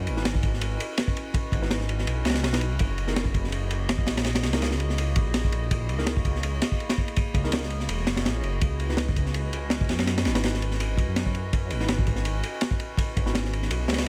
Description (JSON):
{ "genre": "drum and bass, jungle", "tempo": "165 BPM", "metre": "4/4", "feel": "swing 54% on 16ths", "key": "C# dorian", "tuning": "A4 = 439 Hz", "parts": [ { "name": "warbly tape-like pad", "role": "sustained chords", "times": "0.0-14.1 s", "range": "A#3 to D#5", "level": "-38 LUFS", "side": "equal", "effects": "chorus, built-in reverb, vintage 12-bit sampler grit" }, { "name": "detuned saw bass", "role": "bass", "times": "0.0-14.1 s", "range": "E1 to F#2", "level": "-30 LUFS", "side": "equal", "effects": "none" }, { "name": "crunchy breakbeat drum kit", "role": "drums", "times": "0.1-14.1 s", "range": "kick drum, ride cymbal, snare drum", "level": "-28 LUFS", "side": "equal", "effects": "none" }, { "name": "mellow tine electric piano", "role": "stabs", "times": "0.2-13.4 s", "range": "D#4 to B4", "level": "-39 LUFS", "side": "equal", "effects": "dub echo" }, { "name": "swell", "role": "sound effects", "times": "8.2-8.6 s", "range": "none", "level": "-47 LUFS", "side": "equal", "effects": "none" } ], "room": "small room ambience", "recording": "none", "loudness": "-26 LUFS", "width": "mono", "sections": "0.0-14.1 A section", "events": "none", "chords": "0.0 C#m11; 2.8 F#13; 8.6 C#m11" }